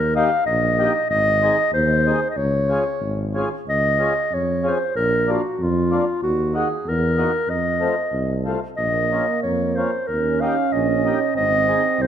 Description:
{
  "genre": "alpine folk, alpine dance band",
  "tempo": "94 BPM",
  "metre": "2/4",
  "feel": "rubato",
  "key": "Db major",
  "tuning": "A4 = 440 Hz",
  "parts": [
    { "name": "mellow clarinet", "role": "melody", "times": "0.0-12.1 s", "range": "F4 to F5", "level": "-20 LUFS", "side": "equal", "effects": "none" },
    { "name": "mellow tuba", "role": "bass", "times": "0.0-12.1 s", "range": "Ab1 to F2", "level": "-24 LUFS", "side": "right 1 dB", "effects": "none" },
    { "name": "mellow accordion", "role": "accompaniment", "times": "0.1-11.8 s", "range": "A3 to Ab4", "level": "-26 LUFS", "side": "left 2 dB", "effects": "none" },
    { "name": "warm euphonium", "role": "second line", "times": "8.8-12.1 s", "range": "Bb3 to Db4", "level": "-24 LUFS", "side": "right 9 dB", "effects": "none" }
  ],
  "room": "light reverb",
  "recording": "minimal, uncompressed stereo recording",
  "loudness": "-18 LUFS",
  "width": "side -9 dB against mid",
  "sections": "0.0-3.7 A section; 3.7-12.1 A section",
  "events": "none",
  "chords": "0.0 Eb; 1.1 Ab; 2.4 Db; 5.0 Bb; 6.2 Ebm; 7.5 F7; 8.8 Bbm; 10.1 Eb; 11.4 Ab"
}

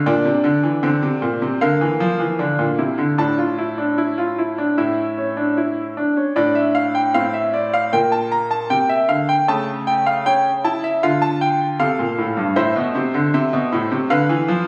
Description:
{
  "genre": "classical, baroque-style 3-part fugue for grand piano",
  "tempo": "77 BPM",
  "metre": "4/4",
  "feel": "straight",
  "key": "D minor",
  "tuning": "A4 = 439 Hz",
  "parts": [
    { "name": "bright concert grand piano", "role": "solo", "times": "0.0-14.7 s", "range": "G2 to Bb5", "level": "-19 LUFS", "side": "equal", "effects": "none" }
  ],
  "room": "moderate recital hall reverb, RT60 1.4 s",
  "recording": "recorded on a phone in the room, studio reverb",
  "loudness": "-19 LUFS",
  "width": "mono",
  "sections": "0.0-6.4 A section; 6.4-14.7 B section",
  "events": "none",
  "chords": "0.1 Bb; 3.2 Asus4; 4.8 A; 6.4 Dm/A; 7.9 Gm/Bb; 9.5 A7/C#; 11.0 Dm; 12.6 Am; 14.1 Dm"
}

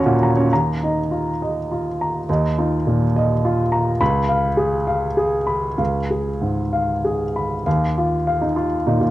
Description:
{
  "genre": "neoclassical minimalist piano",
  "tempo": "96-105 BPM",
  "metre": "3/4",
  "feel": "rubato",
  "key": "unclear",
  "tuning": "A4 = 439 Hz",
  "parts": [
    { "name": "warm upright piano", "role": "solo", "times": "0.0-9.1 s", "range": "Db2 to Cb6", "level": "-17 LUFS", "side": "equal", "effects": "cassette tape" }
  ],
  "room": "moderate spring reverb, RT60 1.2 s, small room reverb",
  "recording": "home recording on cassette",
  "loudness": "-18 LUFS",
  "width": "side -15 dB against mid",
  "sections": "0.5-7.7 A section; 7.7-9.1 B section",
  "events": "none",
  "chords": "0.0 Ebm7; 0.5 Ebsus2; 4.0 Db7; 7.7 Ebsus2"
}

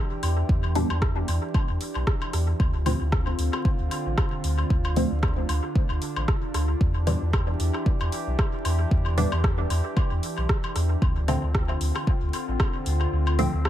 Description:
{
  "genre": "dub techno",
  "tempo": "114 BPM",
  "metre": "4/4",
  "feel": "swing 56% on 16ths",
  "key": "E phrygian",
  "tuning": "A4 = 441 Hz",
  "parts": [
    { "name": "warbly tape-like pad", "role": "sustained chords", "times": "0.0-13.7 s", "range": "D3 to G4", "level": "-32 LUFS", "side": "equal", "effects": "chorus, built-in reverb, sidechain pumping" },
    { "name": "warm sub bass", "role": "bass", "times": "0.2-13.7 s", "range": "A1 to E2", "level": "-25 LUFS", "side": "equal", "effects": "sidechain pumping" },
    { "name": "deep house drum kit", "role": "drums", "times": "0.2-13.7 s", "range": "hi-hat, rim click", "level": "-34 LUFS", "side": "right 1 dB", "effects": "small room ambience, dub echo" },
    { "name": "electronic woodblock and toms", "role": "percussion", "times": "0.2-13.7 s", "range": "none", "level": "-34 LUFS", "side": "left 3 dB", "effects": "sidechain pumping on perc, small room ambience, sidechain pumping on toms, dub echo" },
    { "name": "electronic kick drum", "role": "drums", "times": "0.5-12.7 s", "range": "none", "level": "-24 LUFS", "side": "equal", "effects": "small room ambience" },
    { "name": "filtered dub chord stab", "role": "stabs", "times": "0.8-13.5 s", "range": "D3 to D4", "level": "-30 LUFS", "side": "equal", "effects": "phaser, dub echo" }
  ],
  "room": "light reverb, digital ambience",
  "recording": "echo-heavy mix, vinyl crackle",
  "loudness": "-22 LUFS",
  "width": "side -12 dB against mid",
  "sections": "0.0-13.7 A section",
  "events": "kick drops out 13.1-13.7",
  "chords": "0.0 Em7; 2.6 Dm7; 6.8 Em7; 11.0 Dm7"
}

